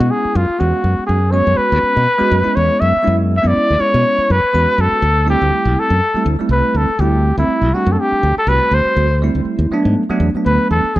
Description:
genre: electric jazz fusion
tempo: 122 BPM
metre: 4/4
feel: swing 55% on 16ths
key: F# minor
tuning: A4 = 439 Hz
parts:
  - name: breathy trumpet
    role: melody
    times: 0.0-11.0 s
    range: E4 to E5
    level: -16 LUFS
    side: left 1 dB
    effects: none
  - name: bell-like tine electric piano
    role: accompaniment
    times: 0.0-11.0 s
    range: F#3 to F#4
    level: -19 LUFS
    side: right 2 dB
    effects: phaser
  - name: modern bright fingered electric bass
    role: bass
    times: 0.0-11.0 s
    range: C2 to B2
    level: -16 LUFS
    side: equal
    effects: none
room: light reverb, small room reverb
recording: none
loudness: -12 LUFS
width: side -16 dB against mid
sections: 0.0-11.0 A section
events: none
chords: 0.0 F#9sus4; 5.0 D9sus4; 9.7 E9sus4

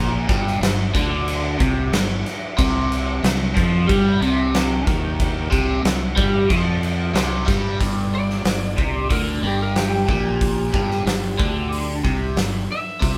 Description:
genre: blues rock power trio and southern rock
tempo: 92 BPM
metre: 4/4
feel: straight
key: unclear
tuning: A4 = 440 Hz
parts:
  - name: overdriven electric guitar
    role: riff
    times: 0.0-13.2 s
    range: G2 to G3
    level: -25 LUFS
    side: equal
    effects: phaser
  - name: fuzz fingered electric bass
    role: bass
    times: 0.0-13.2 s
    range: G1 to G2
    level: -26 LUFS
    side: equal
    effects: overdrive
  - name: oversized low-tuned drum kit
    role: drums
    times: 0.3-13.2 s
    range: crash cymbal, hi-hat, kick drum, snare drum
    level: -24 LUFS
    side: equal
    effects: none
  - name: lightly driven lead guitar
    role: melody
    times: 8.1-13.2 s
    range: G4 to E5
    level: -29 LUFS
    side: equal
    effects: none
room: light reverb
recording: band playing live in one room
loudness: -20 LUFS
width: mono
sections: 0.0-7.8 A section; 7.8-13.2 B section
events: lead electric guitar solo 7.8-13.2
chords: 0.0 G5; 2.6 C5; 7.8 G5

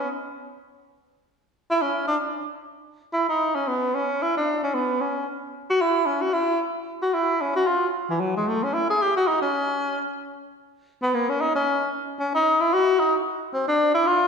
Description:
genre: jazz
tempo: free time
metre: none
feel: none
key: C# minor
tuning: A4 = 445 Hz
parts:
  - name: breathy tenor saxophone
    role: solo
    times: 0.0-14.3 s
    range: E3 to G#4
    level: -21 LUFS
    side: equal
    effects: none
room: wet scoring stage reverb, RT60 1.6 s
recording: recorded in a church or concert hall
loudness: -21 LUFS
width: side -6 dB against mid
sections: 0.0-7.9 A section; 7.9-14.3 B section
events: none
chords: none

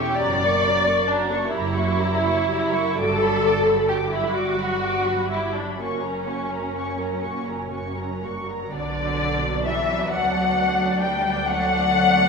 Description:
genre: classical, slow romantic movement for string orchestra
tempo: 43 BPM (dotted quarters)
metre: 6/8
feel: uneven beats, rubato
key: B minor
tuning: A4 = 440 Hz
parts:
  - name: muted studio violin section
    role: melody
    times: 0.0-12.3 s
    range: D5 to D6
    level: -25 LUFS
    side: left 4 dB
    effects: none
  - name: muted symphonic violin section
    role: second line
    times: 0.0-12.3 s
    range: C#4 to D5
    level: -23 LUFS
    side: left 1 dB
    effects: none
  - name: muted symphonic viola section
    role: accompaniment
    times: 0.0-12.3 s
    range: F#3 to A#4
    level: -29 LUFS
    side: right 2 dB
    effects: none
  - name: muted symphonic cello section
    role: bass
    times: 0.0-12.3 s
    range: F#2 to G3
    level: -29 LUFS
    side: right 3 dB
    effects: none
  - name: muted symphonic double bass section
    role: bass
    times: 0.0-12.3 s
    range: F#1 to D2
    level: -32 LUFS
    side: right 3 dB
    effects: none
room: wet scoring stage reverb, RT60 1.6 s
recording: minimal, uncompressed stereo recording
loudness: -20 LUFS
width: side -5 dB against mid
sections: 0.0-8.7 A section; 8.7-12.3 B section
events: none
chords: 0.2 F#; 1.5 F#7b9; 3.0 Gmaj7; 5.8 F#; 8.7 Bm; 10.1 Bm/D; 11.5 D7

